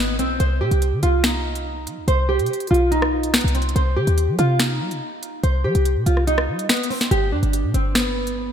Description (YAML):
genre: hip hop, drill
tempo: 143 BPM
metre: 4/4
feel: half-time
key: C harmonic minor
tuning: A4 = 440 Hz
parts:
  - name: nylon-string guitar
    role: melody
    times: 0.0-8.5 s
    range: B3 to C5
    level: -22 LUFS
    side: right 1 dB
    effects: wide subtle chorus, ping-pong delay
  - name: short 808-style bass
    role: bass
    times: 0.0-8.5 s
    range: G1 to G3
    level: -20 LUFS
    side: equal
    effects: none
  - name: drill drum kit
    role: drums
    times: 0.2-8.4 s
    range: finger snaps, hi-hat, rim click, snare drum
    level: -23 LUFS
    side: equal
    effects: none
room: light reverb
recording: none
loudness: -18 LUFS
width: side -8 dB against mid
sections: 0.4-8.5 A section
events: none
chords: 0.4 Cm; 7.1 G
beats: | 0.40 0.82 1.24 1.66 | 2.08 2.50 2.92 3.34 | 3.76 4.18 4.60 5.02 | 5.43 5.86 6.27 6.69 | 7.11 7.53 7.95 8.37